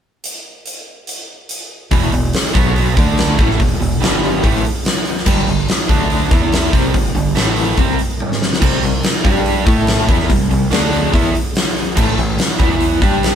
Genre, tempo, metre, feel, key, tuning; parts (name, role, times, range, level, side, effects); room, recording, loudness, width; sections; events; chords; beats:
hard rock; 143 BPM; 4/4; straight; E minor; A4 = 440 Hz
huge arena drum kit; drums; 0.2-13.3 s; crash cymbal, hi-hat, kick drum, snare drum, toms; -16 LUFS; equal
cranked stack guitar; riff; 1.9-13.3 s; E2 to A4; -20 LUFS; right 8 dB; overdrive
overdriven semi-hollow guitar; riff; 1.9-13.3 s; E2 to A4; -20 LUFS; left 5 dB; tremolo
growling fingered electric bass; bass; 1.9-13.3 s; E1 to A2; -20 LUFS; equal; overdrive
light reverb; band playing live in one room; -13 LUFS; side -8 dB against mid
0.2-1.9 A section; 1.9-13.3 B section
drum fill 8.2-8.6
0.2 N.C.; 1.9 E5; 2.5 B5; 3.0 D5; 3.4 E5; 4.0 G5; 4.4 A5; 5.3 G5; 5.9 D5; 6.3 E5; 6.7 G5; 7.4 A5; 7.8 C5; 9.2 G5; 9.7 A5; 10.1 C5; 10.7 D5; 11.1 E5; 12.0 A5; 12.6 E5
| 0.24 0.66 1.08 1.50 | 1.92 2.34 2.76 3.18 | 3.60 4.01 4.43 4.85 | 5.27 5.68 6.10 6.52 | 6.94 7.36 7.78 8.20 | 8.62 9.03 9.45 9.87 | 10.29 10.71 11.13 11.55 | 11.97 12.39 12.81 13.23